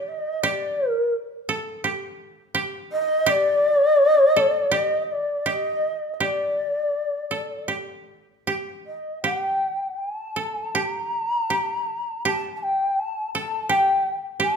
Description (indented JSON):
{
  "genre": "japanese traditional, Japanese chamber music",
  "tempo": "76-86 BPM",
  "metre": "4/4",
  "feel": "rubato",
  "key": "G hirajoshi",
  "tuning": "A4 = 439 Hz",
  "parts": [
    { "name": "mellow long shakuhachi", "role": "melody", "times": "0.0-14.6 s", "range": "D5 to Bb5", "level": "-21 LUFS", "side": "left 1 dB", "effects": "none" },
    { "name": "koto", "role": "second line", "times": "0.0-14.6 s", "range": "G4 to A4", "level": "-26 LUFS", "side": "right 3 dB", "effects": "none" }
  ],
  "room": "moderate recital hall reverb, RT60 1.5 s",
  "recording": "minimal, uncompressed stereo recording",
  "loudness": "-21 LUFS",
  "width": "side -6 dB against mid",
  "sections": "0.0-14.6 A section",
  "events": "none",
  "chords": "none"
}